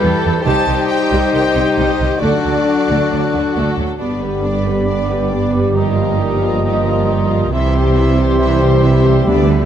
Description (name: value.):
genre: cinematic.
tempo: 136 BPM.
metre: 4/4.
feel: straight.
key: G major.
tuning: A4 = 440 Hz.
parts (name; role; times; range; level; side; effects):
bright silver concert flute; second line; 0.0-9.7 s; Bb5 to G6; -27 LUFS; left 4 dB; none.
mellow clarinet; second line; 0.0-9.7 s; F4 to Eb5; -24 LUFS; left 4 dB; none.
warm symphonic violin section; second line; 0.0-9.7 s; B3 to C5; -25 LUFS; left 2 dB; none.
rich symphonic viola section; accompaniment; 0.0-9.7 s; C3 to E4; -23 LUFS; equal; none.
dark French horn section; sustained chords; 0.0-9.7 s; F#3 to G4; -20 LUFS; left 6 dB; none.
mellow trumpet; stabs; 0.0-9.7 s; A4 to Eb5; -24 LUFS; right 1 dB; none.
rich symphonic cello section; bass; 0.0-9.7 s; G2 to A4; -20 LUFS; right 2 dB; none.
rich symphonic double bass section; bass; 0.0-9.7 s; G1 to E2; -18 LUFS; right 3 dB; none.
warm symphonic violin section; melody; 0.4-9.7 s; G4 to A5; -26 LUFS; left 3 dB; none.
dark cor anglais; second line; 4.0-9.7 s; D5 to E5; -27 LUFS; right 3 dB; none.
clear trombone section; sustained chords; 4.0-9.7 s; D3 to G3; -23 LUFS; right 3 dB; none.
timpani; percussion; 9.3-9.7 s; D3; -22 LUFS; left 1 dB; none.
room: moderate scoring stage reverb, RT60 1.9 s.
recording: none.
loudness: -12 LUFS.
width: side -9 dB against mid.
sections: 0.0-4.0 A section; 4.0-9.7 B section.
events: none.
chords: 0.4 Cm; 2.2 D; 4.0 G; 5.8 Ebadd9/G; 7.5 C.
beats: 0.01 | 0.45 0.89 1.32 1.77 | 2.21 2.66 3.11 3.55 | 4.00 4.44 4.88 5.32 | 5.76 6.21 6.65 7.08 | 7.52 7.96 8.40 8.83 | 9.27.